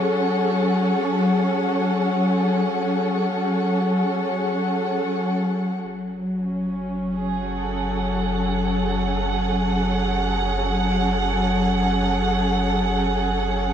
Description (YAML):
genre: ambient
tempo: free time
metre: none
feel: none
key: F# minor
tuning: A4 = 440 Hz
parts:
  - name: dark studio string section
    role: sustained chords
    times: 0.0-13.7 s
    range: F#3 to F#5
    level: -20 LUFS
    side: equal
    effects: low-pass filter
  - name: warm sub bass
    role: bass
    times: 5.8-13.7 s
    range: F#1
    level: -28 LUFS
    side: equal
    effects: none
room: wet lush hall reverb, RT60 2.5 s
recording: none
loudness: -20 LUFS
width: side -9 dB against mid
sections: 0.0-5.8 A section; 5.8-13.7 B section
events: filter sweep on string section 5.8-13.7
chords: 0.0 F#madd9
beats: free time